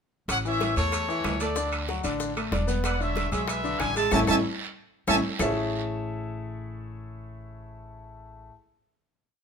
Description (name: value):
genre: latin, salsa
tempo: 188 BPM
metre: 4/4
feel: straight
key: A major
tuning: A4 = 440 Hz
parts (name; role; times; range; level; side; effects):
- bright trumpet section; melody; 0.3-5.2 s; A4 to A5; -27 LUFS; right 1 dB; none
- upright bass; bass; 0.3-8.5 s; E1 to E2; -32 LUFS; equal; none
- bongos; percussion; 0.3-5.5 s; none; -37 LUFS; left 4 dB; none
- claves; percussion; 0.3-5.5 s; none; -38 LUFS; left 5 dB; none
- congas; percussion; 0.3-5.5 s; none; -36 LUFS; right 2 dB; none
- guiro; percussion; 0.3-5.5 s; none; -39 LUFS; right 6 dB; none
- maracas; percussion; 0.3-5.5 s; none; -40 LUFS; left 5 dB; none
- timbales; percussion; 0.3-5.5 s; none; -34 LUFS; right 6 dB; none
- clear concert grand piano; accompaniment; 0.5-8.5 s; D3 to E5; -30 LUFS; left 2 dB; none
room: moderate large studio reverb, RT60 1.0 s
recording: minimal, uncompressed stereo recording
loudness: -24 LUFS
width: side -6 dB against mid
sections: 0.3-5.4 A section; 5.4-8.0 final chord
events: band accent 4.1-5.4; drum fill 4.4-5.4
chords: 0.3 A; 1.6 D; 2.8 E7; 4.1 A; 5.4 Amaj7